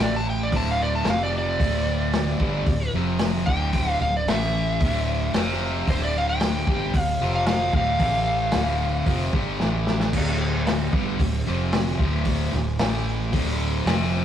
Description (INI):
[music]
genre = blues rock power trio and southern rock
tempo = 113 BPM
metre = 4/4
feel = straight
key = D minor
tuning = A4 = 445 Hz
[part]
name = overdriven slide guitar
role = melody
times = 0.0-9.3 s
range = C5 to A5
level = -26 LUFS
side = equal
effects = none
[part]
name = thick fuzz guitar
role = riff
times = 0.0-14.2 s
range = D2 to A3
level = -26 LUFS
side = equal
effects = distortion
[part]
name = vintage muted fingered electric bass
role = bass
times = 0.0-14.2 s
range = D1 to A1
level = -27 LUFS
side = equal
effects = none
[part]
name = vintage drum kit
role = drums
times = 0.5-14.0 s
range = crash cymbal, hi-hat, kick drum, snare drum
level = -26 LUFS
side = left 1 dB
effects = none
[sound]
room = moderate studio reverb, RT60 0.6 s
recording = rough rehearsal-room recording, tube saturation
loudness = -20 LUFS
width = side -10 dB against mid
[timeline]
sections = 0.0-10.1 A section; 10.1-14.2 B section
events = electric slide guitar solo 0.0-10.1; drum fill 9.6-10.1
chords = 0.0 A5; 0.5 D5; 1.1 F5; 1.6 D5; 2.9 F5; 3.5 D5; 4.3 A5; 4.8 D5; 5.3 F5; 5.9 D5; 7.2 F5; 7.7 Dm; 8.0 A5; 8.5 Dm; 9.6 A5; 10.1 D5; 11.5 F5; 12.0 D5; 12.8 A5; 13.3 D5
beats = 0.53 1.07 | 1.60 2.14 2.67 3.21 | 3.74 4.28 4.81 5.34 | 5.88 6.41 6.94 7.48 | 8.01 8.54 9.07 9.61 | 10.14 10.67 11.21 11.74 | 12.27 12.80 13.34 13.87